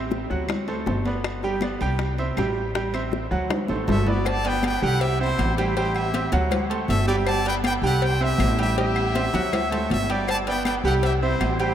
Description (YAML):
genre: latin, salsa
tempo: 159 BPM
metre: 4/4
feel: straight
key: G major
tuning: A4 = 437 Hz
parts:
  - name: bright grand piano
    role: accompaniment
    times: 0.0-11.7 s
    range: F#3 to G5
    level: -26 LUFS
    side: right 3 dB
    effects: none
  - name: upright bass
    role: bass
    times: 0.0-11.7 s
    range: G1 to D2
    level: -26 LUFS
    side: equal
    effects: none
  - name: bongos and cowbell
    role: percussion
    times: 0.1-11.7 s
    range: none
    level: -33 LUFS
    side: left 8 dB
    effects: none
  - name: congas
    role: percussion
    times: 0.1-11.7 s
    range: none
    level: -31 LUFS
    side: left 1 dB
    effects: none
  - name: timbales and agogo bells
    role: percussion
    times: 0.1-11.7 s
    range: none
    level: -32 LUFS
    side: right 4 dB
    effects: none
  - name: claves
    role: percussion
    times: 0.5-11.6 s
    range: none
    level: -41 LUFS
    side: left 6 dB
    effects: none
  - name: bright trumpet section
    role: melody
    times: 3.9-11.7 s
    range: E4 to A5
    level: -26 LUFS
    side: left 1 dB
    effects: none
room: moderate huge ambient reverb, RT60 8.0 s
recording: in a vast, echoing space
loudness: -21 LUFS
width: side -10 dB against mid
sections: 0.0-4.3 A section; 4.3-11.7 B section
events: drum fill 3.5-4.3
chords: 0.5 D7; 1.2 G; 2.0 C; 2.8 Am7; 3.5 D7; 4.3 Gadd9; 5.0 C; 5.8 Am7; 6.5 D7; 7.3 Gadd9; 8.0 C; 8.8 Am7; 9.5 D7; 10.3 Gadd9; 11.0 C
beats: 0.11 0.49 0.87 | 1.25 1.62 2.00 2.38 | 2.75 3.13 3.50 3.88 | 4.26 4.63 5.01 5.39 | 5.76 6.14 6.51 6.89 | 7.27 7.64 8.02 8.39 | 8.77 9.15 9.52 9.90 | 10.28 10.65 11.03 11.40